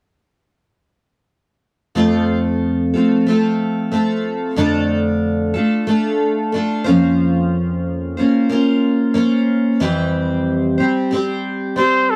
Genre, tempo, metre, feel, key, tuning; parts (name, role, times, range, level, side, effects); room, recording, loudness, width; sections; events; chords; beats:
pop; 92 BPM; 4/4; swing 60% on 16ths; F major; A4 = 438 Hz
picked steel-string acoustic guitar; accompaniment; 1.9-12.2 s; F2 to C5; -18 LUFS; equal; double-tracked
growling trumpet; melody; 11.8-12.2 s; A4 to C5; -16 LUFS; equal
moderate booth ambience, RT60 0.2 s; dry, close 1970s-style studio recording; -17 LUFS; mono
2.0-12.2 A section
2.0 F; 4.6 Dm/F; 6.9 Bbmadd9/F; 9.8 C/F
| 1.96 2.61 3.27 3.92 | 4.58 5.23 5.89 6.54 | 7.20 7.85 8.50 9.16 | 9.81 10.46 11.12 11.77